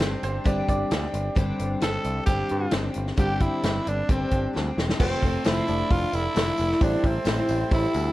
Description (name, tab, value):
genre	folk rock and heartland rock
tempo	132 BPM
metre	4/4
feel	straight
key	unclear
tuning	A4 = 442 Hz
part	raspy tenor saxophone	melody	0.0-8.1 s	C4 to A4	-28 LUFS	right 1 dB	none
part	picked twelve-string acoustic guitar	accompaniment	0.0-8.1 s	F2 to G4	-28 LUFS	left 2 dB	none
part	picked electric bass	bass	0.0-8.1 s	E1 to G2	-29 LUFS	equal	none
part	natural country drum kit	drums	0.0-8.0 s	crash cymbal, hi-hat, kick drum, snare drum	-25 LUFS	equal	none
part	bright upright piano	second line	0.2-1.7 s	C5 to D5	-32 LUFS	right 5 dB	none
part	reed electric piano	accompaniment	5.0-8.1 s	C4 to D5	-35 LUFS	right 6 dB	fast tremolo
part	tonewheel organ	sustained chords	5.0-8.1 s	G4 to D6	-38 LUFS	right 1 dB	none
part	tambourine	percussion	5.0-8.0 s	none	-47 LUFS	left 9 dB	none
room	light reverb, small room ambience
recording	worn, warbling old tape, cassette tape, warbly pitch drift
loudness	-22 LUFS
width	side -16 dB against mid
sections	0.0-5.0 A section; 5.0-8.1 B section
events	drum fill 4.5-5.0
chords	0.0 Gsus4; 5.0 F; 5.7 Dmadd9/F; 6.8 Am7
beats	0.00 0.46 0.91 | 1.36 1.82 2.27 2.73 | 3.18 3.63 4.09 4.54 | 4.99 5.45 5.90 6.35 | 6.80 7.26 7.71